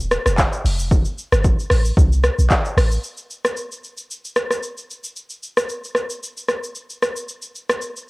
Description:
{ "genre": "afrobeats", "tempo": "113 BPM", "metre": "4/4", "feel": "swing 55% on 16ths", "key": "unclear", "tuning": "A4 = 440 Hz", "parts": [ { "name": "clean 808-style bass", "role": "bass", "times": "0.0-3.0 s", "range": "Eb1 to C2", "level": "-17 LUFS", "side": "equal", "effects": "none" }, { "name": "deep house drum kit", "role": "drums", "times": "0.0-8.1 s", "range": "handclaps, hi-hat, kick drum, rim click, shaker", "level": "-19 LUFS", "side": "equal", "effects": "cassette tape" } ], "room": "little or no reverb", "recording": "home recording on cassette", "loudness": "-17 LUFS", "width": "side -25 dB against mid", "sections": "0.0-3.0 A section; 3.0-8.1 B section", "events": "none", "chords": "none" }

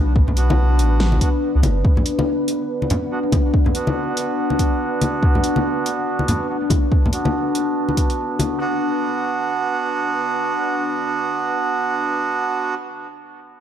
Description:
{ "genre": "deep dubstep", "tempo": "142 BPM", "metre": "4/4", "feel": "swing 59% on 16ths, half-time", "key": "B minor", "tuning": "A4 = 440 Hz", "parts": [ { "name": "deep dark ambient pad", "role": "sustained chords", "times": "0.0-12.7 s", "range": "D4 to B5", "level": "-24 LUFS", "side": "left 2 dB", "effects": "chorus, built-in reverb" }, { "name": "soft dub sub bass", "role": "bass", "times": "0.0-1.8 s", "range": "F#1 to C#2", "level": "-16 LUFS", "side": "equal", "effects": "none" }, { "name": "electronic kick drum", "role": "drums", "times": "0.2-8.1 s", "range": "none", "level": "-17 LUFS", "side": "equal", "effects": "overdrive" }, { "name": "congas", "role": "percussion", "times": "0.3-8.5 s", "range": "none", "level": "-24 LUFS", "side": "left 2 dB", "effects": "dub echo" }, { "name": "melodica", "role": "stabs", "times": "0.4-12.7 s", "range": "B3 to F#4", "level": "-23 LUFS", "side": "right 4 dB", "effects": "low-pass filter, dub echo" }, { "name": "dubstep drum kit", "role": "drums", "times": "0.4-8.5 s", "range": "hi-hat, snare drum", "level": "-26 LUFS", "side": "equal", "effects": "none" } ], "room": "moderate echo chamber reverb, RT60 1.7 s", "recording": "dark, warm production", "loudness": "-17 LUFS", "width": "side -10 dB against mid", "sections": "0.0-8.6 A section; 8.6-12.0 B section", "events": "filter sweep on melodica 0.0-8.6", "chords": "0.0 Bm" }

